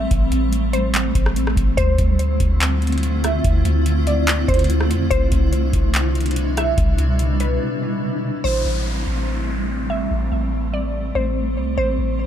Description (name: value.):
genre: hip hop, atmospheric cloud-rap.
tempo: 144 BPM.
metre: 4/4.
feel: half-time.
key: A minor.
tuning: A4 = 442 Hz.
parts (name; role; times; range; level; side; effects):
glassy wavetable pluck; melody; 0.0-12.3 s; B4 to E5; -26 LUFS; equal; chorus, digital delay.
granular cloud pad; sustained chords; 0.0-12.3 s; B2 to F4; -23 LUFS; equal; built-in reverb, sidechain pumping.
soft 808-style bass; bass; 0.0-12.3 s; A1 to F2; -20 LUFS; equal; none.
booming analog drum machine; drums; 0.1-7.5 s; handclaps, hi-hat, kick drum, rim click; -21 LUFS; equal; none.
downlifter; sound effects; 8.4-11.8 s; none; -33 LUFS; left 1 dB; none.
room: digital ambience.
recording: none.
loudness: -17 LUFS.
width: side -10 dB against mid.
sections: 0.0-8.4 A section; 8.4-12.3 B section.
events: break 7.6-8.4.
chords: 0.0 Am7; 1.8 Dm9; 5.1 Cmaj9; 8.4 Am7.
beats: | 0.11 0.53 0.94 1.36 | 1.78 2.19 2.61 3.03 | 3.44 3.86 4.28 4.70 | 5.11 5.53 5.95 6.36 | 6.78 7.20 7.61 8.03 | 8.45 8.86 9.28 9.70 | 10.11 10.53 10.95 11.36 | 11.78 12.20.